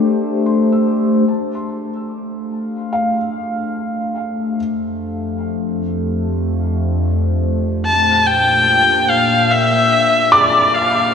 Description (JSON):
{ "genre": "ambient", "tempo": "73 BPM", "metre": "4/4", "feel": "straight", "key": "G dorian", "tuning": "A4 = 440 Hz", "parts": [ { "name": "warbly tape-like pad", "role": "sustained chords", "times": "0.0-11.1 s", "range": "F2 to F5", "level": "-18 LUFS", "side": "left 1 dB", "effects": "chorus, built-in reverb, phaser" }, { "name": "felt-muted upright piano", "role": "arpeggios", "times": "0.0-4.6, 10.3-11.1 s", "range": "F5 to E6", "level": "-18 LUFS", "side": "equal", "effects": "diffuse ambient delay" }, { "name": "rich electric violin", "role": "melody", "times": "7.9-11.1 s", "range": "D5 to A5", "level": "-12 LUFS", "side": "left 2 dB", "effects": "diffuse ambient delay" } ], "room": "wet cathedral reverb, RT60 4.6 s", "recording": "in a vast, echoing space, cassette tape", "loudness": "-14 LUFS", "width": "side -7 dB against mid", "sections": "0.0-1.3 A section; 1.3-11.1 B section", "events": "fade-in on ambient pad 1.3-11.1", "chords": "0.0 Am7; 1.3 Gsus2; 4.6 F; 7.9 Bb69", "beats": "0.47 | 1.29 2.11 2.94 3.76 | 4.58 5.40 6.22 7.04 | 7.87 8.69 9.51 10.33" }